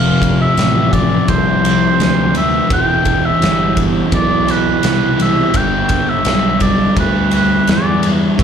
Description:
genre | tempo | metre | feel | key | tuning
stoner and doom metal | 84 BPM | 4/4 | straight | unclear | A4 = 440 Hz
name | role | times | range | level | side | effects
warm oboe | melody | 0.0-8.1 s | B4 to G5 | -17 LUFS | equal | slapback echo, tape echo
thick fuzz guitar | riff | 0.0-8.4 s | E2 to G3 | -19 LUFS | left 9 dB | distortion
thick fuzz guitar | riff | 0.0-8.4 s | E2 to G3 | -19 LUFS | right 10 dB | distortion
fuzz picked electric bass | bass | 0.0-8.4 s | E1 to E2 | -18 LUFS | equal | overdrive
oversized low-tuned drum kit | drums | 0.2-8.4 s | kick drum, ride cymbal, snare drum | -18 LUFS | equal | none
room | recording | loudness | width
small room ambience | live gig heard through the venue's PA, club reverb | -11 LUFS | side -8 dB against mid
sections
0.0-8.4 A section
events
none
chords
0.0 F; 2.7 Em; 5.5 G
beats
0.57 1.28 1.99 | 2.70 3.41 4.12 4.83 | 5.54 6.26 6.97 7.68 | 8.39

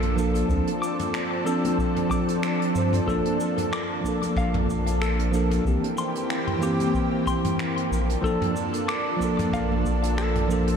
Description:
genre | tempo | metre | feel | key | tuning
sunset chillout | 93 BPM | 4/4 | swing 56% on 16ths | Bb lydian | A4 = 441 Hz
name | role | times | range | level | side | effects
bell-like tine electric piano | accompaniment | 0.0-10.8 s | E3 to C5 | -26 LUFS | equal | auto-pan, ping-pong delay
lush unison pad | sustained chords | 0.0-10.8 s | E3 to A4 | -28 LUFS | right 1 dB | chorus
semi-hollow electric guitar | arpeggios | 0.0-10.5 s | G4 to D6 | -32 LUFS | left 2 dB | ping-pong delay
round analog bass | bass | 0.0-10.8 s | Bb1 to G2 | -26 LUFS | equal | none
soft brush drum kit | drums | 0.0-10.8 s | cabasa, finger snaps, hi-hat, toms | -33 LUFS | equal | none
electronic kick drum | drums | 0.5-10.0 s | none | -31 LUFS | equal | none
congas | percussion | 1.6-9.8 s | none | barely audible | none | none
room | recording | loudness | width
wet cathedral reverb, RT60 6.4 s | dreamy mix soaked in reverb | -22 LUFS | side -7 dB against mid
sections
0.0-10.8 A section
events
none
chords
0.5 Dm7; 3.1 Bbmaj7; 5.7 C7; 7.9 Bbmaj7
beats
| 0.50 1.14 1.79 2.43 | 3.08 3.72 4.37 5.01 | 5.66 6.30 6.95 7.59 | 8.24 8.88 9.53 10.18

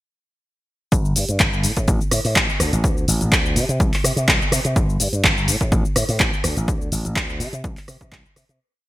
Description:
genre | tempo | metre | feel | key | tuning
filtered disco house | 125 BPM | 4/4 | swing 54% on 16ths | unclear | A4 = 439 Hz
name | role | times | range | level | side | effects
slap bass with an envelope filter | bass | 0.9-8.6 s | G1 to C3 | -22 LUFS | equal | sidechain pumping
electronic kick drum | drums | 0.9-8.2 s | none | -21 LUFS | equal | overdrive
punchy analog drum machine | drums | 0.9-8.6 s | cabasa, handclaps, hi-hat, rim click | -20 LUFS | equal | overdrive, sidechain pumping on hats, sidechain pumping on perc, gated reverb
room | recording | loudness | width
digital ambience | bright 1980s-style digital production | -17 LUFS | side -16 dB against mid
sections
0.9-8.6 drop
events
drop 0.9-8.6; fade-out 6.0-8.6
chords
none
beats
| 0.92 1.40 1.88 2.36 | 2.84 3.32 3.80 4.28 | 4.76 5.24 5.72 6.20 | 6.68 7.16 7.64 8.12

